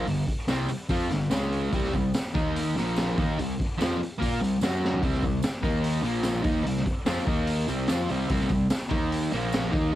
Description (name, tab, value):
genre	garage rock duo or trio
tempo	146 BPM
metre	4/4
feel	straight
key	unclear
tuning	A4 = 440 Hz
part	fuzz guitar	riff	0.0-10.0 s	G2 to Bb4	-27 LUFS	equal	distortion, cassette tape
part	fuzz fingered electric bass	bass	0.0-9.9 s	G1 to Bb2	-32 LUFS	equal	overdrive
part	raw garage drum kit	drums	0.1-9.8 s	hi-hat, kick drum, snare drum, toms	-29 LUFS	equal	cassette tape
part	tambourine	percussion	0.5-9.6 s	none	-44 LUFS	right 8 dB	none
room	light reverb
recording	home recording on cassette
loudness	-24 LUFS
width	side -14 dB against mid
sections	0.0-10.0 A section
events	drum fill 4.8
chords	0.0 G5; 1.3 C#5; 1.7 C5; 2.3 Eb5; 2.8 Bb5; 3.2 C5; 4.6 F#5; 5.0 C5; 5.6 Eb5; 6.1 Bb5; 6.5 C5; 7.3 Eb5; 7.7 C5; 8.9 Eb5; 9.3 Bb5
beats	| 0.06 0.48 0.89 1.31 | 1.72 2.14 2.55 2.97 | 3.38 3.79 4.21 4.62 | 5.03 5.44 5.85 6.26 | 6.67 7.07 7.48 7.89 | 8.30 8.70 9.11 9.52 | 9.92